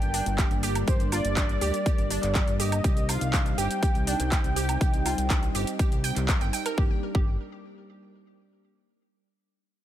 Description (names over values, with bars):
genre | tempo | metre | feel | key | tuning
progressive house | 122 BPM | 4/4 | straight | G minor | A4 = 440 Hz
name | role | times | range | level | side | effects
warm velvety synth lead | melody | 0.0-6.2 s | C5 to G5 | -32 LUFS | equal | chorus, sidechain pumping, ping-pong delay
lush unison pad | sustained chords | 0.0-7.0 s | G3 to Eb4 | -34 LUFS | equal | chorus, sidechain pumping
fat analog bass | bass | 0.0-7.4 s | D1 to C2 | -30 LUFS | equal | tube saturation, sidechain pumping
deep house drum kit | drums | 0.0-6.8 s | handclaps, hi-hat, shaker, woodblock | -32 LUFS | right 1 dB | overdrive, sidechain pumping on hats, sidechain pumping on perc
glassy wavetable pluck | arpeggios | 0.1-7.4 s | D4 to G6 | -35 LUFS | right 5 dB | chorus, sidechain pumping, ping-pong delay
electronic kick drum | drums | 0.4-7.2 s | none | -25 LUFS | equal | overdrive
room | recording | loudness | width
little or no reverb | none | -23 LUFS | side -12 dB against mid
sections
0.0-6.8 A section; 6.8-8.7 B section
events
drop 0.0-6.8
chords
0.0 Gm; 2.8 Cm; 6.8 Gm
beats
0.38 | 0.88 1.37 1.86 2.35 | 2.84 3.33 3.83 4.32 | 4.81 5.30 5.79 6.29 | 6.78 7.27